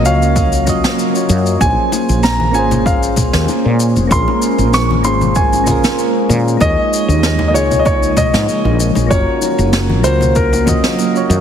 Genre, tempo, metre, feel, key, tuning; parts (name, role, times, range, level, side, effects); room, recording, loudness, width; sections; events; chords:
sunset chillout; 96 BPM; 4/4; swing 54% on 16ths; Bb minor; A4 = 440 Hz
dark concert grand piano; melody; 0.0-11.3 s; Bb4 to Db6; -18 LUFS; right 1 dB; tape echo
soft electric-piano-like synth keys; accompaniment; 0.0-11.4 s; Bb3 to Eb5; -18 LUFS; moving between left 4 dB and right 3 dB; chorus, auto-pan, ping-pong delay
ethereal airy pad; sustained chords; 0.0-11.4 s; Db3 to F5; -20 LUFS; left 1 dB; ensemble chorus, built-in reverb, phaser
woody fretless electric bass; bass; 0.0-11.4 s; F1 to Bb2; -16 LUFS; equal
shaker and snare drum; drums; 0.1-11.4 s; -21 LUFS; equal
electronic kick drum; drums; 0.4-10.8 s; -18 LUFS; equal; overdrive
bongos and congas; percussion; 1.6-11.4 s; -23 LUFS; left 2 dB
moderate lush hall reverb, RT60 2.0 s, small room reverb; heavily compressed radio sound; -11 LUFS; side -8 dB against mid
0.0-11.4 A section
0.0 Gbmaj7; 1.6 Bbm9; 6.6 Eb9sus4; 9.1 Gbmaj7